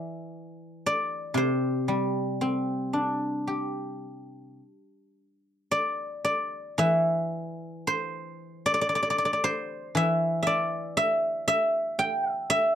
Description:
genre	chinese traditional, Chinese solo plucked strings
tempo	52-60 BPM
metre	4/4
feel	rubato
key	C gong mode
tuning	A4 = 440 Hz
part	guzheng	solo	0.0-12.8 s	C3 to G5	-25 LUFS	equal	none
room	little or no reverb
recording	dry, close 1970s-style studio recording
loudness	-25 LUFS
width	side -9 dB against mid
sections	0.0-5.7 A section; 5.7-12.8 B section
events	none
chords	none

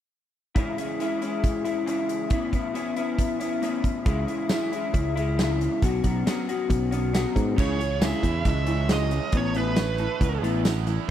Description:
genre	indie rock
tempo	137 BPM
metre	4/4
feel	straight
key	C# minor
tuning	A4 = 442 Hz
part	electric guitar through a small old amp	riff	0.6-11.1 s	A2 to F#4	-27 LUFS	left 3 dB	analog chorus
part	big rock drum kit	drums	0.6-11.0 s	crash cymbal, hi-hat, kick drum, snare drum, tambourine	-27 LUFS	right 1 dB	none
part	picked electric bass	bass	4.1-11.0 s	A1 to G#2	-26 LUFS	equal	none
part	nasal lead guitar with a parked wah	melody	7.6-10.4 s	B4 to E5	-30 LUFS	right 4 dB	overdrive, tape echo
part	raw garage guitar	riff	7.6-11.1 s	C#3 to C#5	-32 LUFS	right 15 dB	overdrive, lush chorus
room	little or no reverb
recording	dry, close 1970s-style studio recording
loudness	-23 LUFS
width	side -10 dB against mid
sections	0.6-7.6 A section; 7.6-11.1 B section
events	none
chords	0.6 C#m; 2.3 Aadd9; 4.1 C#m; 5.8 Bsus2; 7.6 C#m; 9.3 Aadd9

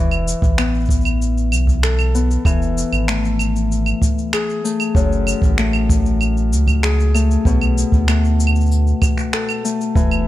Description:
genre	folktronica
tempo	96 BPM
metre	4/4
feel	straight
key	unclear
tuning	A4 = 445 Hz
part	Celtic harp	arpeggios	0.0-10.3 s	F#2 to A4	-20 LUFS	left 5 dB	vintage 12-bit sampler grit, low-pass filter, ping-pong delay
part	round analog bass	bass	0.0-10.3 s	E1 to D2	-17 LUFS	right 1 dB	none
part	electronic claves, cabasa and finger snaps	drums	0.1-10.2 s	none	-24 LUFS	right 2 dB	none
part	kick drum	drums	0.4-10.1 s	none	-18 LUFS	equal	none
part	warm string quartet	sustained chords	10.0-10.3 s	E3 to B3	-38 LUFS	right 2 dB	none
room	studio ambience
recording	none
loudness	-15 LUFS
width	side -14 dB against mid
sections	0.0-10.3 A section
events	none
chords	0.0 Esus4; 2.5 A5/E; 5.0 F#madd9; 7.5 Bm7

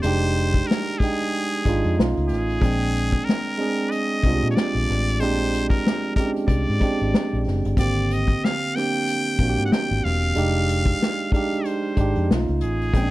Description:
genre	R&B, neo-soul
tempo	93 BPM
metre	4/4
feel	swing 56% on 16ths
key	unclear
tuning	A4 = 440 Hz
part	trumpet with straight mute	melody	0.0-13.1 s	Ab4 to G5	-27 LUFS	left 1 dB	none
part	tine electric piano	accompaniment	0.0-13.1 s	D3 to G5	-24 LUFS	right 3 dB	none
part	vintage muted fingered electric bass	bass	0.0-13.1 s	E1 to Bb2	-23 LUFS	left 1 dB	none
part	unplugged drum kit	drums	0.0-13.1 s	hi-hat, kick drum, snare drum	-22 LUFS	left 1 dB	none
room	little or no reverb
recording	none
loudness	-19 LUFS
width	side -17 dB against mid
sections	0.0-13.1 A section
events	none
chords	0.0 Fm7; 2.0 B9; 2.6 Bb9; 7.8 Abmaj9; 10.4 Fm7; 12.3 B9

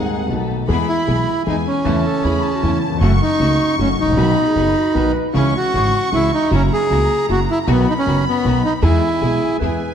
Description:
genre	tango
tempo	155 BPM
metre	3/4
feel	rubato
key	E major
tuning	A4 = 440 Hz
part	warm studio violin section	second line	0.0-9.9 s	F#5 to C#6	-25 LUFS	left 2 dB	none
part	warm concert grand piano	accompaniment	0.0-9.8 s	D#1 to G#4	-21 LUFS	left 3 dB	none
part	warm studio string section	stabs	0.0-9.8 s	A3 to A4	-27 LUFS	right 1 dB	none
part	upright bass	bass	0.0-9.8 s	F#1 to E2	-20 LUFS	right 1 dB	none
part	bandoneon	melody	0.7-9.6 s	A3 to G#4	-18 LUFS	right 1 dB	none
part	clear clarinet	second line	2.1-5.2, 9.2-9.9 s	E4 to B4	-27 LUFS	right 6 dB	none
room	moderate scoring stage reverb, RT60 1.9 s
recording	dark, warm production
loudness	-14 LUFS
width	side -8 dB against mid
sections	0.7-9.9 A section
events	none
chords	0.3 B7; 0.7 E; 1.9 A/E; 3.0 F#m; 4.2 B; 5.3 C#m; 6.5 F#7; 7.7 B; 8.8 E

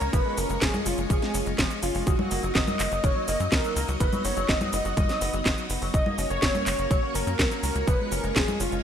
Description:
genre	italo disco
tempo	124 BPM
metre	4/4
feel	straight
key	F# major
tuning	A4 = 440 Hz
part	wide unison lead	melody	0.0-8.8 s	E#4 to D#5	-29 LUFS	equal	digital delay
part	string machine, full ensemble	sustained chords	0.0-8.8 s	G#3 to D#5	-34 LUFS	equal	ensemble chorus
part	electric guitar with an envelope filter	arpeggios	0.0-8.8 s	D#3 to C#4	-34 LUFS	left 2 dB	analog chorus, ping-pong delay
part	tight sequencer bass	bass	0.0-8.8 s	F#1 to F#2	-30 LUFS	equal	none
part	house drum kit	drums	0.0-8.8 s	cabasa, congas, handclaps, hi-hat, snare drum	-28 LUFS	equal	none
part	electronic kick drum	drums	0.1-8.5 s	none	-26 LUFS	equal	none
room	light reverb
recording	bright 1980s-style digital production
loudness	-23 LUFS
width	side -8 dB against mid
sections	0.0-8.8 A section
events	none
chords	0.1 C#/F#; 2.1 D#m/F#; 4.0 B/F#; 5.9 F#; 7.9 C#/F#

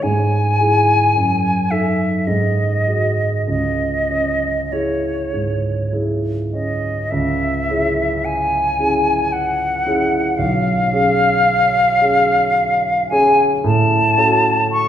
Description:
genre	classical, romantic duo for flute and grand piano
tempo	48-57 BPM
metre	3/4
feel	rubato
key	C# minor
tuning	A4 = 440 Hz
part	silver concert flute	melody	0.0-14.9 s	C#5 to C#6	-17 LUFS	left 1 dB	none
part	warm grand piano	accompaniment	0.0-14.9 s	B1 to A4	-18 LUFS	right 1 dB	none
room	wet recital hall reverb, RT60 1.5 s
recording	heard from further back in the room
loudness	-14 LUFS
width	side -10 dB against mid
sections	0.0-7.1 A section; 7.1-14.9 B section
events	none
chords	0.0 E/G#; 1.2 D#dim/F#; 2.3 G#5; 3.5 C#m; 10.4 C#7/B; 13.6 F#m/A

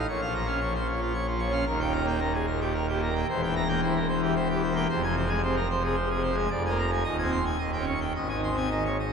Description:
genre	classical, organ toccata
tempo	112 BPM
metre	3/4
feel	straight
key	Ab major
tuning	A4 = 439 Hz
part	pipe organ, full organ	solo	0.0-9.1 s	Eb1 to Db6	-25 LUFS	equal	none
room	wet church reverb, RT60 2.9 s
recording	recorded in a church or concert hall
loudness	-25 LUFS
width	side -6 dB against mid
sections	0.0-9.1 A section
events	none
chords	0.1 Bbm; 1.7 Eb; 3.3 C7/E; 4.9 Fm; 6.5 Bb7/F; 7.1 Ab/Eb; 7.6 Eb7; 8.2 Ab

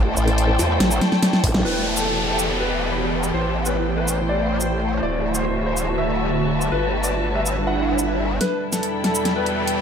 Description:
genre	heavy wobble dubstep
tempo	142 BPM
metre	4/4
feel	half-time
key	E minor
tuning	A4 = 441 Hz
part	evolving wavetable pad	sustained chords	0.0-9.8 s	E2 to C5	-25 LUFS	right 1 dB	chorus, built-in reverb, sidechain pumping
part	growl bass	bass	0.0-8.4 s	D1 to E2	-24 LUFS	equal	distortion, chorus, overdrive
part	muted studio string section	texture	0.0-9.8 s	E4 to C6	-27 LUFS	left 2 dB	sidechain pumping
part	formant-sweep wobble bass	bass	0.2-1.6 s	A1	-19 LUFS	equal	chorus, overdrive
part	dubstep drum kit	drums	0.2-9.8 s	hi-hat, shaker, snare drum	-22 LUFS	equal	none
part	electronic kick drum	drums	1.4-1.5 s	none	-20 LUFS	equal	none
part	warm grand piano	melody	1.6-9.8 s	A4 to F#5	-27 LUFS	left 1 dB	analog chorus, ping-pong delay
part	downlifter, swell and riser	sound effects	1.6-9.8 s	none	-28 LUFS	equal	none
room	moderate plate reverb, RT60 1.2 s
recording	dreamy mix soaked in reverb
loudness	-18 LUFS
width	side -7 dB against mid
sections	0.0-1.6 A section; 1.6-8.4 B section; 8.4-9.8 C section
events	drop 0.0-1.6; drum fill 1.0-1.6, 8.4-9.8; band accent 1.5; swell 7.7-8.4; build-up 8.4-9.8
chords	0.0 Am; 1.6 Em; 3.3 Am; 5.0 D; 6.7 G; 8.4 Em

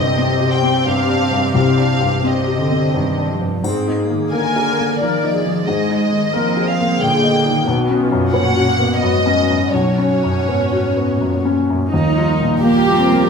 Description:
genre	cinematic, emotional film score for orchestra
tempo	81-91 BPM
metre	3/4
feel	rubato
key	unclear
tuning	A4 = 441 Hz
part	dark studio violin section	melody	0.0-13.3 s	Bb4 to Ab5	-21 LUFS	left 1 dB	none
part	dark symphonic viola section	accompaniment	0.0-13.3 s	G3 to Bb4	-21 LUFS	left 1 dB	none
part	felt-muted upright piano	accompaniment	0.0-13.3 s	B1 to Eb5	-18 LUFS	left 2 dB	none
part	dark studio cello section	bass	0.0-13.3 s	F#2 to Eb4	-21 LUFS	right 1 dB	none
part	triangle	percussion	3.6-5.0 s	none	-34 LUFS	left 2 dB	none
part	dark French horn section	sustained chords	11.9-13.3 s	F3 to Bb3	-22 LUFS	equal	none
part	warm symphonic violin section	second line	12.6-13.3 s	G4	-17 LUFS	equal	none
room	wet stone room reverb, RT60 1.1 s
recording	none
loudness	-14 LUFS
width	side -6 dB against mid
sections	0.0-11.9 A section; 11.9-13.3 A section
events	none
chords	0.0 Cmadd9; 3.6 Absus2; 7.7 Bsus2; 11.9 Ebadd9

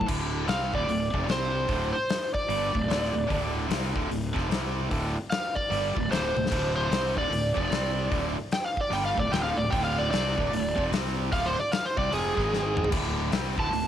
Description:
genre	blues rock power trio and southern rock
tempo	150 BPM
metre	4/4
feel	swing 62% on 8ths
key	D minor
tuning	A4 = 440 Hz
part	overdriven slide guitar	melody	0.0-13.9 s	G#4 to A5	-29 LUFS	right 1 dB	none
part	tight distorted guitar	riff	0.0-13.9 s	D2 to C4	-30 LUFS	right 1 dB	distortion
part	fuzz fingered electric bass	bass	0.0-13.9 s	D1 to C2	-32 LUFS	equal	overdrive
part	big rock drum kit	drums	0.0-13.8 s	crash cymbal, hi-hat, kick drum, snare drum, toms	-32 LUFS	left 3 dB	none
room	light reverb, small room ambience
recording	1960s-style stereo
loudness	-25 LUFS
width	side -10 dB against mid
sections	0.1-13.9 A section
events	electric slide guitar solo 0.1-13.9; drum fill 6.3, 12.5-12.9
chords	0.1 Dm; 1.3 C5; 1.7 Dm; 4.5 C5; 4.9 Dm; 7.7 C5; 8.1 Dm; 10.9 C5; 11.3 Dm; 12.3 G#5; 12.9 D5

